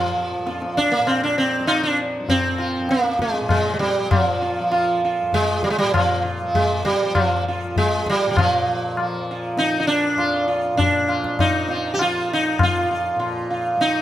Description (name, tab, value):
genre	indian classical, Hindustani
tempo	99 BPM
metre	7/4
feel	straight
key	F raga bageshri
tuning	A4 = 440 Hz
part	sitar	melody	0.0-14.0 s	F3 to G4	-19 LUFS	right 1 dB	none
part	tanpura	drone	0.0-14.0 s	F2 to F3	-31 LUFS	left 1 dB	none
part	tabla	percussion	0.5-14.0 s	none	-24 LUFS	left 3 dB	none
room	moderate recital hall reverb, RT60 1.5 s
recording	none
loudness	-18 LUFS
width	side -12 dB against mid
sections	0.0-8.4 A section; 8.4-14.0 B section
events	none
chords	none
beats	0.45 1.06 1.68 2.29 2.90 3.50 | 4.12 4.72 5.33 5.94 6.55 7.15 7.76 | 8.37 8.97 9.58 10.18 10.79 11.39 11.99 | 12.59 13.20 13.80